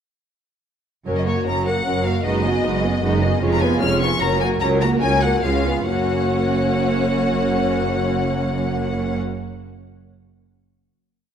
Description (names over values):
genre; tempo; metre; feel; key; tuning
quick classical-period movement for string orchestra; 133-156 BPM; 3/4; rubato; F# major; A4 = 436 Hz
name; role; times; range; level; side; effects
rich chamber violin section; second line; 1.1-9.2 s; E#4 to D#5; -24 LUFS; left 5 dB; none
rich chamber viola section; accompaniment; 1.1-9.2 s; F#3 to F#4; -22 LUFS; right 2 dB; none
clear chamber cello section; bass; 1.1-9.2 s; C#2 to F#2; -26 LUFS; right 4 dB; none
rich chamber double bass section; bass; 1.1-9.2 s; E#1 to C#2; -25 LUFS; right 3 dB; none
clear studio violin section; melody; 1.2-9.2 s; C#5 to E#6; -25 LUFS; left 4 dB; none
room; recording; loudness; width
moderate scoring stage reverb, RT60 1.8 s; none; -17 LUFS; side -8 dB against mid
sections
1.1-5.9 theme; 5.9-8.4 final chord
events
slowing down 2.8-5.9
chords
1.1 F#; 2.2 G#m7/F#; 3.4 C#7/E#; 4.2 F#; 4.6 F#/C#; 5.4 C#7; 5.9 F#